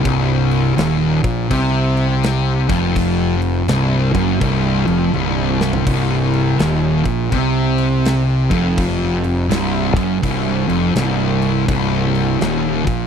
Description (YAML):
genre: stoner and doom metal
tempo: 83 BPM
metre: 4/4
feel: swing 63% on 8ths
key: C minor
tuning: A4 = 440 Hz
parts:
  - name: thick fuzz guitar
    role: riff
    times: 0.0-13.1 s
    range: C2 to C3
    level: -19 LUFS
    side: left 12 dB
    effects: distortion
  - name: thick fuzz guitar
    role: riff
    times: 0.0-13.1 s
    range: C2 to C3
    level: -18 LUFS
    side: right 7 dB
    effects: distortion
  - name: fuzz fingered electric bass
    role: bass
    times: 0.1-13.1 s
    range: C1 to C2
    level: -23 LUFS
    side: left 1 dB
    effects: overdrive
  - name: big rock drum kit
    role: drums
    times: 0.1-13.0 s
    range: crash cymbal, kick drum, snare drum, toms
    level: -25 LUFS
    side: left 1 dB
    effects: none
room: little or no reverb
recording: dry, close 1970s-style studio recording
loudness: -14 LUFS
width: side -7 dB against mid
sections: 0.0-13.1 A section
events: drum fill 5.1-5.9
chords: 0.0 Cm